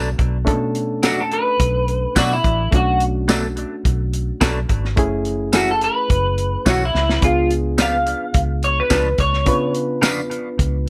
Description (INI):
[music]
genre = straight-eighth soul blues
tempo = 107 BPM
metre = 4/4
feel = straight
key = unclear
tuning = A4 = 441 Hz
[part]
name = bright reed electric piano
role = accompaniment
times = 0.0-10.9 s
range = A3 to B4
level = -28 LUFS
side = equal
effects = none
[part]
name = direct-recorded clean electric guitar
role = stabs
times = 0.0-10.2 s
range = F#2 to D4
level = -27 LUFS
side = equal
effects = phaser, analog delay
[part]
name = vintage muted fingered electric bass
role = bass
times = 0.0-10.9 s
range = F#1 to C#3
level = -24 LUFS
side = equal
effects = none
[part]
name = warm soul drum kit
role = drums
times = 0.2-10.7 s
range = hi-hat, kick drum, snare drum, tambourine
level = -22 LUFS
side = equal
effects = none
[part]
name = electric guitar through a small old amp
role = melody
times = 1.1-9.7 s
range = E4 to E#5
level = -22 LUFS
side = equal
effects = analog chorus
[sound]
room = light reverb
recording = none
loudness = -19 LUFS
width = mono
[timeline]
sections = 0.0-10.9 A section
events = drum fill 6.9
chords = 0.0 Bm7; 5.0 F#m7; 7.2 C#7b9